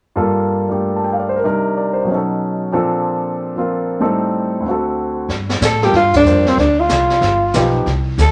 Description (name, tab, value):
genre	jazz, small-group swing and bop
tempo	187 BPM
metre	4/4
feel	swing 63% on 8ths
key	G minor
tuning	A4 = 440 Hz
part	warm concert grand piano	accompaniment	0.2-7.9 s	D2 to A5	-19 LUFS	equal	none
part	upright bass	bass	5.3-8.3 s	G1 to A2	-20 LUFS	equal	none
part	jazz brush drum kit	drums	5.3-8.3 s	brushed snare drum, hi-hat, kick drum, ride cymbal, snare drum	-24 LUFS	equal	none
part	breathy alto saxophone	melody	5.6-8.3 s	C4 to A4	-16 LUFS	equal	none
room	moderate club reverb, RT60 0.6 s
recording	none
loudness	-17 LUFS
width	mono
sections	0.1-5.3 A section; 5.3-8.3 B section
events	band accent 6.1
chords	0.1 Gm9; 1.4 Cm9; 2.1 B9; 2.7 Bbmaj7; 4.0 Am7b5; 4.7 D7; 5.3 Gm9; 6.6 Csus24; 7.2 G7b13